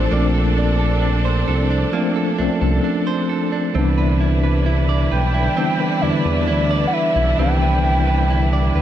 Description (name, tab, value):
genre	R&B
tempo	66 BPM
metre	4/4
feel	straight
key	unclear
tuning	A4 = 440 Hz
part	warm velvety synth lead	melody	0.0-8.8 s	D5 to G5	-23 LUFS	equal	chorus, tape echo
part	mellow tine electric piano	accompaniment	0.0-8.8 s	D3 to F4	-21 LUFS	left 2 dB	medium stereo tremolo
part	warm studio string section	sustained chords	0.0-8.8 s	D3 to B4	-25 LUFS	right 1 dB	none
part	direct-recorded clean electric guitar	arpeggios	0.0-8.8 s	Bb3 to D5	-25 LUFS	right 8 dB	tape echo
part	smooth synth bass	bass	0.0-8.8 s	Bb1 to E2	-18 LUFS	equal	none
room	light reverb, digital ambience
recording	none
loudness	-16 LUFS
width	side -11 dB against mid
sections	0.0-8.8 A section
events	none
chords	0.0 Bbmaj9; 3.8 Cmaj9